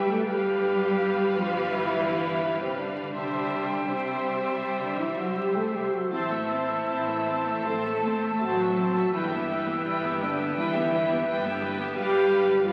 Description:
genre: cinematic, emotional film score for orchestra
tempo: 74-87 BPM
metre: 4/4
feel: rubato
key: unclear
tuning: A4 = 440 Hz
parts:
  - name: rich studio violin section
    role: melody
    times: 0.0-12.7 s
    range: E5 to A5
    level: -40 LUFS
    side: equal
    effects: none
  - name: clear clarinet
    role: second line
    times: 0.0-12.7 s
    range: B4 to C5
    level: -41 LUFS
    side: equal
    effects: none
  - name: mellow concert flute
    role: second line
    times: 0.0-12.7 s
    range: G5 to A5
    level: -38 LUFS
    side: equal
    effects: none
  - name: mellow oboe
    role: second line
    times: 0.0-12.7 s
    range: E5 to F5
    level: -38 LUFS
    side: equal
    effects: none
  - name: rich studio violin section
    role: second line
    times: 0.0-12.7 s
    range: G4 to C5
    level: -38 LUFS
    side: equal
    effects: none
  - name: clear studio viola section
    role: accompaniment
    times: 0.0-12.7 s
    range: G3 to C4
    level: -36 LUFS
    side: equal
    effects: none
  - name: mellow French horn section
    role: sustained chords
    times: 0.0-12.7 s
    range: C4 to A4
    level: -29 LUFS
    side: equal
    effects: none
  - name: dark studio double bass section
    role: bass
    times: 0.0-12.7 s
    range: G1 to C2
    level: -43 LUFS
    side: equal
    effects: none
  - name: rich studio cello section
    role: bass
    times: 0.0-12.7 s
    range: C3 to A3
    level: -36 LUFS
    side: equal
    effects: none
room: wet scoring stage reverb, RT60 1.5 s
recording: very old 78 rpm record, vinyl crackle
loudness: -27 LUFS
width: mono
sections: 0.0-12.7 A section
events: none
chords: 0.3 G7; 3.1 C; 6.1 Am; 9.1 Em/G; 12.0 G7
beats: | 0.27 0.98 1.69 2.40 | 3.15 3.88 4.62 5.36 | 6.12 6.88 7.67 8.42 | 9.13 9.85 10.56 11.27 | 11.96 12.65

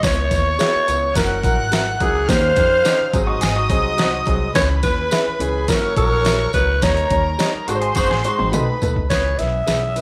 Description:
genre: uptempo 1960s-style soul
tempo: 106 BPM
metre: 4/4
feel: straight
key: C# minor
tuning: A4 = 440 Hz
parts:
  - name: growling alto saxophone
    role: melody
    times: 0.0-10.0 s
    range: G#4 to E5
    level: -22 LUFS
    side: equal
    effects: none
  - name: rich chamber violin section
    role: second line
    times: 0.0-9.1 s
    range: A#4 to F#6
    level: -26 LUFS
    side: equal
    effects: none
  - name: warm upright piano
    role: accompaniment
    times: 0.0-10.0 s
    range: D#3 to C#5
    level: -28 LUFS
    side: equal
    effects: none
  - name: upright bass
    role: bass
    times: 0.0-10.0 s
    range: F#1 to E#2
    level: -25 LUFS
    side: equal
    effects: none
  - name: dubstep drum kit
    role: drums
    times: 0.0-10.0 s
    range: hi-hat, kick drum, snare drum, toms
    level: -24 LUFS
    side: equal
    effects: overdrive
  - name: tambourine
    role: percussion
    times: 0.0-10.0 s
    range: none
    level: -36 LUFS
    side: equal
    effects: none
  - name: electric guitar through a small old amp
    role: stabs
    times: 0.6-9.8 s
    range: F#4 to E5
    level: -30 LUFS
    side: equal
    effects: none
  - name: clean electric guitar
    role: riff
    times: 3.3-8.7 s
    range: B#3 to G#4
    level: -29 LUFS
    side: equal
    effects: none
  - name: mellow horn section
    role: second line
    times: 8.0-9.5 s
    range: E4 to B#4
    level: -29 LUFS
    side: equal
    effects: none
room: moderate spring reverb, RT60 1.4 s, small room ambience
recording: none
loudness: -18 LUFS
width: mono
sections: 0.0-9.1 A section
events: band accent 6.8-9.1; drum fill 8.0-9.1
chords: 0.0 C#m7; 1.2 F#7; 2.3 D#7; 3.1 G#7; 4.6 C#m7; 5.7 F#7; 6.8 D#7; 7.7 G#7; 8.5 B7; 9.1 C#m7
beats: | 0.03 0.59 1.16 1.72 | 2.29 2.85 3.42 3.98 | 4.55 5.12 5.68 6.25 | 6.82 7.39 7.96 8.53 | 9.10 9.67

